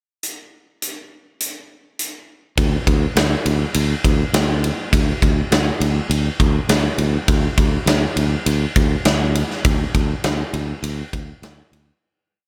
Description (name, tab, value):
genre	hard rock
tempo	102 BPM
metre	4/4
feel	straight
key	unclear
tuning	A4 = 440 Hz
part	huge arena drum kit	drums	0.2-11.9 s	hi-hat, kick drum, ride cymbal, snare drum	-22 LUFS	equal	none
part	modern bright fingered electric bass	bass	2.6-11.9 s	D2	-22 LUFS	equal	none
room	little or no reverb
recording	none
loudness	-19 LUFS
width	mono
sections	0.2-2.6 pickup bar; 2.6-12.0 riff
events	fade-out 9.6-12.0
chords	none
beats	| 0.23 0.82 1.40 1.99 | 2.58 3.16 3.75 4.34 | 4.93 5.51 6.10 6.69 | 7.28 7.87 8.46 9.06 | 9.65 10.24 10.83 11.43